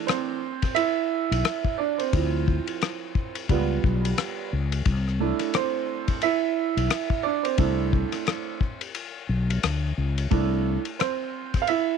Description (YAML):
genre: hip hop, jazz-hop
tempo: 88 BPM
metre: 4/4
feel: swing 59% on 16ths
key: C major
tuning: A4 = 440 Hz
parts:
  - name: warm upright piano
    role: accompaniment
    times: 0.0-12.0 s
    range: E3 to F5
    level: -26 LUFS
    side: right 13 dB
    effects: none
  - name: cloth-damped thuddy drum kit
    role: drums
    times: 0.1-11.9 s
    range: hi-hat, kick drum, ride cymbal, rim click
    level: -28 LUFS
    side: left 5 dB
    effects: none
  - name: mellow fretless electric bass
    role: bass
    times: 1.3-10.8 s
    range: B1 to D2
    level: -24 LUFS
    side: left 2 dB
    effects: wide subtle chorus
room: small room reverb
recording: 1960s-style stereo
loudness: -23 LUFS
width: side -6 dB against mid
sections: 0.0-10.3 A section; 10.3-12.0 A section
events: upright piano solo 0.0-10.3, 10.3-12.0; kick muted 8.9-10.3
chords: 0.0 C69; 2.1 Dm7; 3.5 Db7#11; 4.9 C69